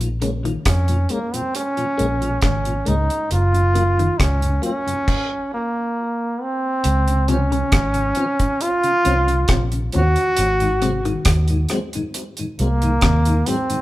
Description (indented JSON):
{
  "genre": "roots reggae",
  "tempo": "68 BPM",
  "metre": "4/4",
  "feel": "straight",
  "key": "Db major",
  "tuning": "A4 = 440 Hz",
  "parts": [
    { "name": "mellow tonewheel organ", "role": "accompaniment", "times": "0.0-13.8 s", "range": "Gb2 to F4", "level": "-27 LUFS", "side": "left 2 dB", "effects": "slow rotary speaker, dub echo" },
    { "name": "vintage muted fingered electric bass", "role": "bass", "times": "0.0-13.4 s", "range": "Gb1 to F2", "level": "-19 LUFS", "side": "equal", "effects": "none" },
    { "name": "deep reggae drum kit", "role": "drums", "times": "0.0-13.8 s", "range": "crash cymbal, hi-hat, kick drum, rim click", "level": "-22 LUFS", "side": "equal", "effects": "none" },
    { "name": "semi-hollow electric guitar", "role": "arpeggios", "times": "0.2-13.7 s", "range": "Ab2 to Eb3", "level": "-28 LUFS", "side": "left 4 dB", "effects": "none" },
    { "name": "clear trombone", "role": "melody", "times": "0.7-13.8 s", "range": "Bb3 to Gb4", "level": "-21 LUFS", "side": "right 1 dB", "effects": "none" }
  ],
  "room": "moderate large studio reverb, RT60 1.3 s",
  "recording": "band playing live in one room",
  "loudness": "-17 LUFS",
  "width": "side -16 dB against mid",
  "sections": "0.0-6.8 A section; 6.8-13.8 B section",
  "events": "stop 5.1-6.8",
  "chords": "0.0 Bbm7; 3.3 Gbmaj7; 6.8 Dbmaj7; 10.4 Ab7"
}